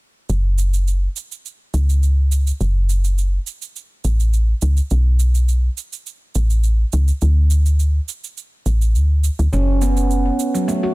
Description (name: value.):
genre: organic downtempo.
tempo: 104 BPM.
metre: 4/4.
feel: straight.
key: F# minor.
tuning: A4 = 439 Hz.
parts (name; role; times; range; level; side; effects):
woody FM bass; bass; 0.3-10.3 s; F#1 to D2; -15 LUFS; equal; none.
cabasa; drums; 0.3-10.8 s; none; -31 LUFS; right 10 dB; none.
handpan; arpeggios; 9.5-10.9 s; F#3 to F#4; -18 LUFS; right 2 dB; ping-pong delay.
room: little or no reverb.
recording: dense, heavily limited modern master.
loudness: -16 LUFS.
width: side -21 dB against mid.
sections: 0.3-10.9 A section.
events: none.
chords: 0.3 F#m; 4.9 Asus2; 7.2 D5; 9.5 F#5.